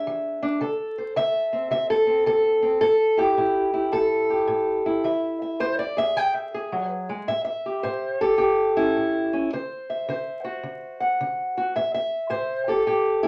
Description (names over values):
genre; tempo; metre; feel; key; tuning
acoustic country blues, solo or duo; 108 BPM; 4/4; swing 65% on 8ths; unclear; A4 = 440 Hz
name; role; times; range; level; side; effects
fingerpicked steel-string acoustic guitar; solo; 0.0-13.3 s; A2 to G5; -24 LUFS; equal; none
room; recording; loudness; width
wet studio ambience, RT60 0.5 s; vinyl crackle, nothing above 10.4 kHz; -24 LUFS; mono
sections
0.0-7.3 A section; 7.3-13.3 B section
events
steel-string acoustic guitar solo 0.0-7.3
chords
0.0 E7; 0.6 D5; 2.8 A5; 5.0 E; 7.3 A7; 9.5 D7; 11.7 A7(no3)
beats
0.04 | 0.60 1.15 1.70 2.26 | 2.81 3.37 3.92 4.48 | 5.04 5.59 6.15 6.71 | 7.27 7.83 8.38 8.94 | 9.50 10.06 10.62 11.18 | 11.74 12.30 12.87